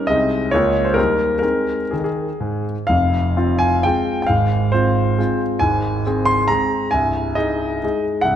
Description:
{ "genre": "classical, romantic triple-time dance for piano with dotted rhythms", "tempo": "117-150 BPM", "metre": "3/4", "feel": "rubato", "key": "F minor", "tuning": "A4 = 442 Hz", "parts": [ { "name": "clear grand piano", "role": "solo", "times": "0.0-8.4 s", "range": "C1 to C6", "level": "-16 LUFS", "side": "equal", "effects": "none" } ], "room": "moderate concert hall reverb, RT60 1.8 s", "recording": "none", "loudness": "-16 LUFS", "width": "side -10 dB against mid", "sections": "0.0-2.9 A section; 2.9-8.4 B section", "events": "none", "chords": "0.1 Ab/C; 0.5 Bbm7/Db; 1.0 Eb; 1.4 Ab; 2.9 Fm; 4.3 Fm/Ab; 5.6 Ab; 6.9 Ab/C" }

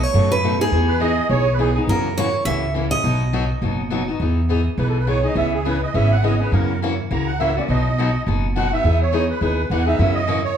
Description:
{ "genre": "acoustic string swing (jazz manouche)", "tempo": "207 BPM", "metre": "4/4", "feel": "swing 57% on 8ths", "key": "E major", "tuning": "A4 = 441 Hz", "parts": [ { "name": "picked steel-string acoustic guitar", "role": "melody", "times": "0.0-3.9 s", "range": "G#4 to E5", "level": "-22 LUFS", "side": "right 2 dB", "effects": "none" }, { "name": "upright bass", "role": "bass", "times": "0.0-10.5 s", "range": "F#1 to F#2", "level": "-20 LUFS", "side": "equal", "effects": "none" }, { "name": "picked steel-string acoustic guitar", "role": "accompaniment", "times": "0.1-10.4 s", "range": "B2 to G#4", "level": "-22 LUFS", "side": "left 3 dB", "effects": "none" }, { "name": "musette accordion", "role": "second line", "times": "0.9-1.8, 4.8-10.6 s", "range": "G#4 to A#5", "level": "-22 LUFS", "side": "right 4 dB", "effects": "none" } ], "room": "wet large studio reverb, RT60 0.9 s", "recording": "band playing live in one room", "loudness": "-17 LUFS", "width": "side -8 dB against mid", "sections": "0.0-4.2 A section; 4.2-10.6 B section", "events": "accordion solo 4.2-10.6", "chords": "0.0 B7; 0.7 Emaj7; 1.9 F#7; 3.0 B; 4.2 Emaj7; 5.4 C#m7; 6.5 F#7; 7.7 B; 8.8 Emaj7; 10.0 F#7" }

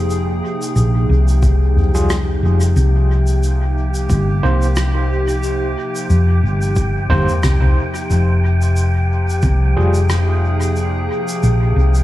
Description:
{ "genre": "ambient dub", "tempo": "90 BPM", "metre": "4/4", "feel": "swing 55% on 16ths", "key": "F minor", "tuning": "A4 = 440 Hz", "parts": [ { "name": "warbly tape-like pad", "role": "sustained chords", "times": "0.0-12.0 s", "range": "C3 to Ab4", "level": "-22 LUFS", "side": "equal", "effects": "chorus, built-in reverb" }, { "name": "hollow-body short-scale fingered electric bass", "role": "bass", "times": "0.0-12.0 s", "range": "F1 to F2", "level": "-14 LUFS", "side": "equal", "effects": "none" }, { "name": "wind-like tuned noise texture", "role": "texture", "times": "0.0-12.0 s", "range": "G5", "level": "-29 LUFS", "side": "equal", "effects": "built-in reverb" }, { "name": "soft-mallet drum kit", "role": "drums", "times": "0.1-12.0 s", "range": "rim click, shaker, toms", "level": "-24 LUFS", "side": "left 1 dB", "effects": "dub echo" }, { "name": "electronic kick drum", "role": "drums", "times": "1.4-9.6 s", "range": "none", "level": "-20 LUFS", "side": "equal", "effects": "overdrive" }, { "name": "overdriven tine electric piano", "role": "stabs", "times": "1.9-10.0 s", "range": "G3 to C5", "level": "-26 LUFS", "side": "right 2 dB", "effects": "medium tremolo, dub echo" } ], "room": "light reverb, small room ambience", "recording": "none", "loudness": "-14 LUFS", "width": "side -15 dB against mid", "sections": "0.0-12.0 A section", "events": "none", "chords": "0.0 Fmadd9; 2.8 Cm7; 8.1 Fmadd9" }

